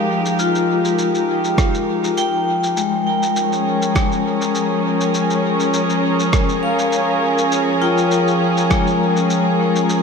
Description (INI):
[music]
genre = ambient dub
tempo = 101 BPM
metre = 4/4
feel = swing 55% on 16ths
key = unclear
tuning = A4 = 439 Hz
[part]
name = dark studio string section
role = sustained chords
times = 0.0-10.0 s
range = F3 to Bb4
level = -18 LUFS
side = right 1 dB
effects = none
[part]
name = vibraphone with medium hard mallets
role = arpeggios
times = 0.0-10.0 s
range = Ab3 to G5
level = -19 LUFS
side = left 4 dB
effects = tape echo
[part]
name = electronic shaker and rim click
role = drums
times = 0.3-10.0 s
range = none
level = -27 LUFS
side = equal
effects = studio reverb, dub echo
[part]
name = electronic kick drum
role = drums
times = 1.6-8.8 s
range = none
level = -19 LUFS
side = right 1 dB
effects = studio reverb
[sound]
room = moderate huge ambient reverb, RT60 6.9 s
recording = none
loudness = -15 LUFS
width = side -5 dB against mid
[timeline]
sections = 0.0-10.0 A section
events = none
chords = 0.0 Fm11; 2.8 Bbm7/F